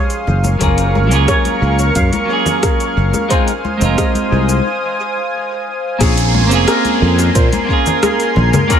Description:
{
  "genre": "sunset chillout",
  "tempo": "89 BPM",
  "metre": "4/4",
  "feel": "straight",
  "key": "Bb minor",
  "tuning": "A4 = 441 Hz",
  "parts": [
    { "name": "clean electric guitar", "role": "accompaniment", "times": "0.0-8.8 s", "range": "F3 to Bb4", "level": "-18 LUFS", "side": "moving between left 6 dB and right 4 dB", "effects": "auto-pan, dub echo" },
    { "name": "lush unison pad", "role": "sustained chords", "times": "0.0-8.8 s", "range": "Ab4 to Eb6", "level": "-19 LUFS", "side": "right 1 dB", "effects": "chorus" },
    { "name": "steel pan", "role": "arpeggios", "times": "0.0-8.8 s", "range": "Ab4 to F5", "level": "-23 LUFS", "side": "left 1 dB", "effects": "dub echo" },
    { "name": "deep house drum kit", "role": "drums", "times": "0.1-8.8 s", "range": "cabasa, congas, hi-hat, rim click", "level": "-21 LUFS", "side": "left 1 dB", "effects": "overdrive, studio ambience, dub echo" },
    { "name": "sustaining fretless electric bass", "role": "bass", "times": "0.3-8.5 s", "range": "F1 to Bb2", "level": "-14 LUFS", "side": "equal", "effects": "tube saturation" },
    { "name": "congas", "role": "percussion", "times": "0.3-8.7 s", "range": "none", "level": "-25 LUFS", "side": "left 3 dB", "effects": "dub echo" },
    { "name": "electronic kick drum", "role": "drums", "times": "0.6-8.8 s", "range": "none", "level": "-16 LUFS", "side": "equal", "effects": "overdrive, studio ambience" },
    { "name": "downlifter", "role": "sound effects", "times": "6.0-8.8 s", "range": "none", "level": "-23 LUFS", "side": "right 4 dB", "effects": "none" }
  ],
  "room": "light reverb",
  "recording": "echo-heavy mix",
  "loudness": "-12 LUFS",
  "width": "side -8 dB against mid",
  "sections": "0.0-6.0 A section; 6.0-8.8 B section",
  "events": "filter sweep on clean electric guitar 0.0-6.0; break 4.7-6.0",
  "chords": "0.3 Gbmaj7; 3.3 Fm7; 6.0 Bbm9",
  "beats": "| 0.61 1.28 1.96 2.63 | 3.31 3.98 4.66 5.33 | 6.00 6.68 7.35 8.03 | 8.70"
}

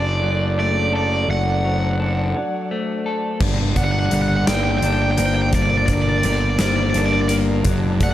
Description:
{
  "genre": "post-rock",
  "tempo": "56 BPM (dotted quarters)",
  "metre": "6/8",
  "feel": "straight",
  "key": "G harmonic minor",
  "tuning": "A4 = 440 Hz",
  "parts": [
    { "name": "cranked stack guitar", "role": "melody", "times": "0.0-8.1 s", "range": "D5 to G5", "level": "-23 LUFS", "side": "right 1 dB", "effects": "overdrive, slapback echo" },
    { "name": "muted studio string section", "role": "sustained chords", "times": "0.0-8.1 s", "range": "F#3 to A5", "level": "-31 LUFS", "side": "left 1 dB", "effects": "none" },
    { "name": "clean electric guitar", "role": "arpeggios", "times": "0.0-8.1 s", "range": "G2 to A4", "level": "-24 LUFS", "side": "left 4 dB", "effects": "slapback echo" },
    { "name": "vibraphone with soft mallets", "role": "arpeggios", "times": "0.0-8.1 s", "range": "Bb4 to D5", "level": "-29 LUFS", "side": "right 7 dB", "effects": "slapback echo" },
    { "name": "fuzz picked electric bass", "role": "bass", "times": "0.0-8.1 s", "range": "F#1 to G1", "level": "-20 LUFS", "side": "equal", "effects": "overdrive" },
    { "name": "huge arena drum kit", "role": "drums", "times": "3.4-8.1 s", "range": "crash cymbal, hi-hat, kick drum, snare drum", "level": "-23 LUFS", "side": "equal", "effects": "none" }
  ],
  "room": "small room ambience",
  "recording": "dark, warm production",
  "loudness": "-17 LUFS",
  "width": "side -13 dB against mid",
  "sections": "0.0-3.4 A section; 3.4-8.1 B section",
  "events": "break 2.4-3.4",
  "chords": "0.0 D/F#; 3.4 Gm",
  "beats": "0.22 | 1.29 2.35 | 3.42 4.48 | 5.54 6.61 | 7.67"
}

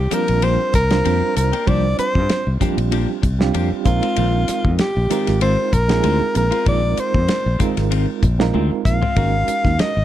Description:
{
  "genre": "electric jazz fusion",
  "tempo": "96 BPM",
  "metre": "4/4",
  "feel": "swing 54% on 16ths",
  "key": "unclear",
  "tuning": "A4 = 440 Hz",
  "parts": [
    { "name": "warm soprano saxophone", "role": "melody", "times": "0.0-10.0 s", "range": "F4 to F5", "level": "-21 LUFS", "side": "left 1 dB", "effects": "plate reverb" },
    { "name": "fingered electric bass", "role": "bass", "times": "0.0-10.0 s", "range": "Ab1 to G2", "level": "-19 LUFS", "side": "equal", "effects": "none" },
    { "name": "overdriven reed electric piano", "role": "accompaniment", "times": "0.1-9.9 s", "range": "G3 to C5", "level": "-24 LUFS", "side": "right 11 dB", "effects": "fast tremolo" },
    { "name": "clean electric guitar", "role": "stabs", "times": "0.1-9.8 s", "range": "Eb3 to G4", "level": "-26 LUFS", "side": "left 9 dB", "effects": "wide subtle chorus" },
    { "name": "damped 70s drum kit", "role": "drums", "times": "0.1-10.0 s", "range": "hi-hat, kick drum, ride cymbal, snare drum, toms", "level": "-22 LUFS", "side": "equal", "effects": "none" }
  ],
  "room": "light reverb",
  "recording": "dark, warm production",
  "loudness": "-15 LUFS",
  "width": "side -12 dB against mid",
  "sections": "0.0-10.0 A section",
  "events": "drum fill 8.5-9.2",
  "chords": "0.0 C9sus4; 3.9 Bb9sus4; 9.2 Ab9sus4",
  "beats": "0.43 1.05 | 1.67 2.30 2.92 3.54 | 4.17 4.79 5.42 6.04 | 6.67 7.29 7.92 8.54 | 9.17 9.79"
}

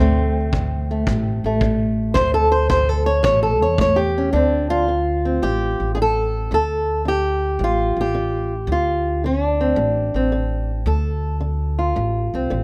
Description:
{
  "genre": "acoustic country blues, solo or duo",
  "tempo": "110 BPM",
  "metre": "4/4",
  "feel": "swing 68% on 8ths",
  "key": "D minor",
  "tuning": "A4 = 437 Hz",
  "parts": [
    { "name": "fingerpicked old ladder-braced acoustic guitar", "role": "melody", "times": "0.0-12.6 s", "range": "D2 to C#5", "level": "-22 LUFS", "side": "equal", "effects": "plate reverb" },
    { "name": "upright bass", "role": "bass", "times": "0.0-12.6 s", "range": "A1 to E2", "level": "-24 LUFS", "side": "equal", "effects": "none" },
    { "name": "kick drum", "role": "drums", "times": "0.5-4.0 s", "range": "none", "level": "-26 LUFS", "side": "equal", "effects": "none" }
  ],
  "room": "light reverb",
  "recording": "none",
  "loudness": "-20 LUFS",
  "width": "mono",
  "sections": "0.0-4.3 A section; 4.3-12.6 B section",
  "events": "steel-string acoustic guitar solo 0.0-4.3",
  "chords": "0.0 D5; 3.2 A; 4.3 Dm7",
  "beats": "0.53 1.07 1.61 | 2.15 2.70 3.24 3.78 | 4.33 4.87 5.42 5.96 | 6.51 7.05 7.60 8.14 | 8.69 9.23 9.78 10.32 | 10.87 11.42 11.96 12.51"
}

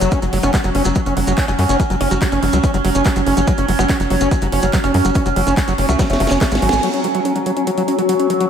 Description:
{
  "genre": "psychedelic trance",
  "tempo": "143 BPM",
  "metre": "4/4",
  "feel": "straight",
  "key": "F# minor",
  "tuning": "A4 = 442 Hz",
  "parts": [
    { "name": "overtone-sweeping drone", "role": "sustained chords", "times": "0.0-8.5 s", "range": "F#3 to F#4", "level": "-19 LUFS", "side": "right 1 dB", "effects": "chorus, built-in reverb, phaser, sidechain pumping" },
    { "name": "overdriven acid bass", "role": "riff", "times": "0.0-8.5 s", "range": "F#3 to C#4", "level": "-20 LUFS", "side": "equal", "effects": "distortion, auto-pan, sidechain pumping, tape echo" },
    { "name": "tight sequencer bass", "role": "bass", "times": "0.0-6.8 s", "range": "F#1 to F#2", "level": "-19 LUFS", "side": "equal", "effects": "none" },
    { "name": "techno drum kit", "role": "drums", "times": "0.0-8.5 s", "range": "crash cymbal, handclaps, hi-hat, snare drum", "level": "-25 LUFS", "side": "equal", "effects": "small room ambience" },
    { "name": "maracas", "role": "percussion", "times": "0.0-6.8 s", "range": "none", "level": "-32 LUFS", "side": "right 2 dB", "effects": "none" },
    { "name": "electronic kick drum", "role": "drums", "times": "0.1-6.5 s", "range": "none", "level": "-17 LUFS", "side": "equal", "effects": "small room ambience" },
    { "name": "metallic wobble bass", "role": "second line", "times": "0.4-6.3 s", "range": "A3 to F#4", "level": "-29 LUFS", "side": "left 4 dB", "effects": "none" }
  ],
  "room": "moderate lush hall reverb, RT60 2.0 s",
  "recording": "dreamy mix soaked in reverb",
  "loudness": "-14 LUFS",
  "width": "side -8 dB against mid",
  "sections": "0.0-6.8 A section; 6.8-8.5 B section",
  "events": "drum fill 6.0-6.8; band accent 6.7",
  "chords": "0.0 F#5",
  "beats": "| 0.12 0.54 0.96 1.38 | 1.80 2.22 2.64 3.06 | 3.48 3.90 4.31 4.73 | 5.15 5.57 5.99 6.41 | 6.83 7.25 7.67 8.09"
}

